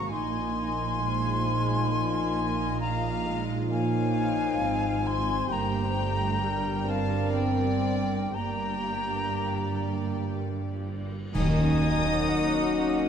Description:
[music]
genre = cinematic, emotional film score for orchestra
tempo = 59-67 BPM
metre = 3/4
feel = rubato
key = unclear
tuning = A4 = 437 Hz
[part]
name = warm symphonic violin section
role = melody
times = 0.0-13.1 s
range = Bb4 to Eb6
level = -39 LUFS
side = left 5 dB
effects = none
[part]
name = silver concert flute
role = second line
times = 0.0-13.1 s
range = Eb5 to Db6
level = -32 LUFS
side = left 2 dB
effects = none
[part]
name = warm symphonic violin section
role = second line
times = 0.0-13.1 s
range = Bb3 to Bb5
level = -37 LUFS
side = left 4 dB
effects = none
[part]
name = dark symphonic viola section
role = accompaniment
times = 0.0-13.1 s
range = C3 to Bb4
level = -34 LUFS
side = right 1 dB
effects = none
[part]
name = mellow French horn section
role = sustained chords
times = 0.0-13.1 s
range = F3 to Eb4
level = -32 LUFS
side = left 4 dB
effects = none
[part]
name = rich chamber cello section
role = bass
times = 0.0-12.1 s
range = G2 to Eb3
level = -34 LUFS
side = right 4 dB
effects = none
[part]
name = warm symphonic double bass section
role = bass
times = 0.0-12.1 s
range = G1 to Eb2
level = -32 LUFS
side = right 4 dB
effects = none
[part]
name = cymbal swell, clash cymbals and concert bass drum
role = percussion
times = 8.4-13.1 s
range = none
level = -35 LUFS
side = equal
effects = none
[part]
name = clear clarinet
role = second line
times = 11.3-13.1 s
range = Gb5 to Ab5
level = -37 LUFS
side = left 1 dB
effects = none
[part]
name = mellow cor anglais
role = second line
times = 11.3-13.1 s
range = Eb4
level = -35 LUFS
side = right 2 dB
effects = none
[part]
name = timpani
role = percussion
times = 11.3-12.7 s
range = Eb3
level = -31 LUFS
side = left 3 dB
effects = none
[sound]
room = moderate scoring stage reverb, RT60 1.5 s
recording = dark, warm production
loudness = -25 LUFS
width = side -8 dB against mid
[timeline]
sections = 0.0-11.3 A section; 11.3-13.1 B section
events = band accent 11.3-12.3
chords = 0.1 Bbsus4; 5.5 Gm; 11.3 Ebm7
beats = | 0.12 1.01 1.92 | 2.81 3.71 4.61 | 5.51 6.43 7.37 | 8.36 9.36 10.36 | 11.34 12.29

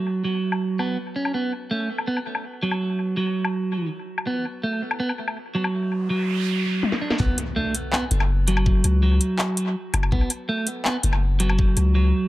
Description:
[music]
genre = half-time drum and bass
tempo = 164 BPM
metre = 4/4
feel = half-time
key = unclear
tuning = A4 = 444 Hz
[part]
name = clean electric guitar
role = arpeggios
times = 0.0-12.3 s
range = F#3 to D4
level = -24 LUFS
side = right 2 dB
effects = low-pass filter, dub echo
[part]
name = drum and bass drum kit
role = drums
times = 0.5-11.8 s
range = handclaps, hi-hat, snare drum, toms, woodblock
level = -27 LUFS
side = left 2 dB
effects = low-pass filter on perc, low-pass filter on toms, low-pass filter on snare, low-pass filter on hats, low-pass filter on room, analog delay
[part]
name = noise sweep and impact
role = sound effects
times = 6.0-8.7 s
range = none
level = -31 LUFS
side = right 1 dB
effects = none
[part]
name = long sustained 808-style bass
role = bass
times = 7.2-12.1 s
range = F#1 to C#2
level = -20 LUFS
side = left 1 dB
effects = tube saturation
[part]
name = electronic kick drum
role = drums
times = 7.2-11.7 s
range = none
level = -21 LUFS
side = left 1 dB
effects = none
[sound]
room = light reverb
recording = echo-heavy mix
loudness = -21 LUFS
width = side -16 dB against mid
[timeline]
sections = 0.0-7.2 A section; 7.2-12.3 B section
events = noise sweep 6.0-7.2; drum fill 6.8-7.2; drop 7.2-12.3; impact 7.2-8.7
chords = 0.0 N.C.; 7.2 B5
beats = 0.24 0.61 0.98 | 1.34 1.71 2.07 2.44 | 2.81 3.17 3.54 3.90 | 4.27 4.63 5.00 5.37 | 5.73 6.10 6.46 6.83 | 7.20 7.56 7.93 8.29 | 8.66 9.03 9.39 9.76 | 10.12 10.49 10.85 11.22 | 11.59 11.95

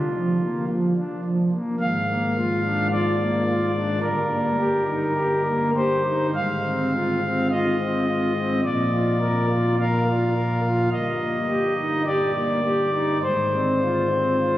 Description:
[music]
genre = classical, chorale-style piece for pipe organ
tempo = 53 BPM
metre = 4/4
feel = rubato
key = Eb major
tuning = A4 = 440 Hz
[part]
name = pipe organ, principal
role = solo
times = 0.0-14.6 s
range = G1 to F5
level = -20 LUFS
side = equal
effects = none
[sound]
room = wet cathedral reverb, RT60 4.4 s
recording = recorded on a phone in the room, club reverb, compression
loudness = -20 LUFS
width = side -14 dB against mid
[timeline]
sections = 0.0-14.6 A section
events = none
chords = 0.0 Bb; 1.8 Bb7/Ab; 4.0 Eb/G; 6.4 Fm/Ab; 8.6 Bb; 10.9 Eb/G; 13.2 Fm/Ab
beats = 0.67 | 1.79 2.90 4.02 5.16 | 6.35 7.51 8.64 9.78 | 10.93 12.06 13.22 14.39

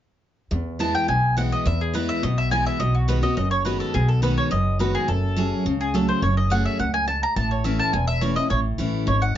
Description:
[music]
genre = bluegrass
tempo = 210 BPM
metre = 4/4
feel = straight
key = E major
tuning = A4 = 441 Hz
[part]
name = picked steel-string acoustic guitar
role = accompaniment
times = 0.5-9.3 s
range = E2 to G#4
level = -25 LUFS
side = equal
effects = none
[part]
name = upright bass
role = bass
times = 0.5-9.3 s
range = E1 to E2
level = -24 LUFS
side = equal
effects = none
[part]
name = mandolin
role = melody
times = 0.8-9.4 s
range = F#4 to A#5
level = -24 LUFS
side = equal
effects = none
[sound]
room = moderate small room reverb, RT60 0.5 s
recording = nothing above 7.6 kHz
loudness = -20 LUFS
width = side -11 dB against mid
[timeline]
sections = 0.5-9.4 A section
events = none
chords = 0.5 E; 2.8 B6; 5.1 F#madd9; 7.4 A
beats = | 0.51 0.80 1.08 1.37 | 1.66 1.94 2.23 2.51 | 2.80 3.08 3.37 3.66 | 3.94 4.23 4.51 4.80 | 5.08 5.37 5.66 5.94 | 6.23 6.51 6.80 7.08 | 7.37 7.65 7.94 8.22 | 8.51 8.79 9.08

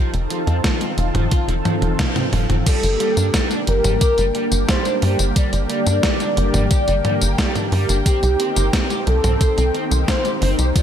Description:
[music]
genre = synthwave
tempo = 89 BPM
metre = 4/4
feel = straight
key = G minor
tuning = A4 = 440 Hz
[part]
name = analog string pad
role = sustained chords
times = 0.0-10.8 s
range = D3 to A4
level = -24 LUFS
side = right 1 dB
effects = ensemble chorus, sidechain pumping
[part]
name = overdriven semi-hollow guitar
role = riff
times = 0.0-10.8 s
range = F3 to C5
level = -28 LUFS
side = right 3 dB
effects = wide subtle chorus, tape echo
[part]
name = tight sequencer bass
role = bass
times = 0.1-10.7 s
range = F1 to G2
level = -19 LUFS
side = equal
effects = none
[part]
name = clean 12-bit digital drum machine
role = drums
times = 0.1-10.8 s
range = crash cymbal, hi-hat, snare drum, tambourine, toms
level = -23 LUFS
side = equal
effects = gated reverb
[part]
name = electronic kick drum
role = drums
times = 0.6-10.8 s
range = none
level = -20 LUFS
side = equal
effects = none
[part]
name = warm velvety synth lead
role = melody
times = 2.7-10.8 s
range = G4 to D5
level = -22 LUFS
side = left 1 dB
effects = chorus, tremolo, digital delay
[sound]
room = light reverb, digital ambience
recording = none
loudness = -16 LUFS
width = side -9 dB against mid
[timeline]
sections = 0.0-2.7 A section; 2.7-10.8 B section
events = drum fill 1.7-2.7; band accent 2.0-2.3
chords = 0.0 F7; 2.7 Gm; 8.1 Cm7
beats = 0.64 1.32 1.99 | 2.67 3.34 4.01 4.69 | 5.36 6.04 6.71 7.38 | 8.06 8.73 9.41 10.08 | 10.76

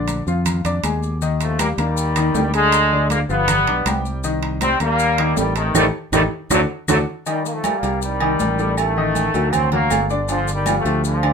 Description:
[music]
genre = latin, salsa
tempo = 159 BPM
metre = 4/4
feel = straight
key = unclear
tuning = A4 = 440 Hz
[part]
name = clear concert grand piano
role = accompaniment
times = 0.0-11.3 s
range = D3 to D6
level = -24 LUFS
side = left 4 dB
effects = none
[part]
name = fingered electric bass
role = bass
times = 0.0-11.3 s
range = G1 to F2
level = -22 LUFS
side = equal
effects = none
[part]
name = congas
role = percussion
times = 0.1-11.3 s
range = none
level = -28 LUFS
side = left 1 dB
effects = none
[part]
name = maracas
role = percussion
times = 0.1-11.2 s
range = none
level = -30 LUFS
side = left 7 dB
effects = none
[part]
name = timbales and agogo bells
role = percussion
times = 0.1-11.3 s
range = none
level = -25 LUFS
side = right 7 dB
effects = none
[part]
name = brilliant trombone section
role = melody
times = 1.4-11.3 s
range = C3 to C4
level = -20 LUFS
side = equal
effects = none
[part]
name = claves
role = percussion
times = 1.6-11.3 s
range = none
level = -31 LUFS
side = left 1 dB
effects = none
[sound]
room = moderate studio reverb, RT60 0.5 s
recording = minimal, uncompressed stereo recording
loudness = -16 LUFS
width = side -6 dB against mid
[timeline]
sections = 0.0-7.3 A section; 7.3-11.3 B section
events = band accent 5.8-7.3; drum fill 6.1-7.3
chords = 0.0 Bb7; 1.2 Eb; 2.7 Ddim; 3.5 G7; 4.2 Cm7; 5.8 Gsus2/A; 6.5 D; 7.3 Cm7; 8.8 Ebmaj7#11/A; 9.5 Daug; 10.3 G5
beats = 0.08 0.46 0.83 | 1.21 1.59 1.97 2.35 | 2.73 3.10 3.48 3.86 | 4.24 4.62 5.00 5.37 | 5.75 6.13 6.51 6.88 | 7.26 7.64 8.02 8.40 | 8.77 9.15 9.53 9.91 | 10.29 10.66 11.04

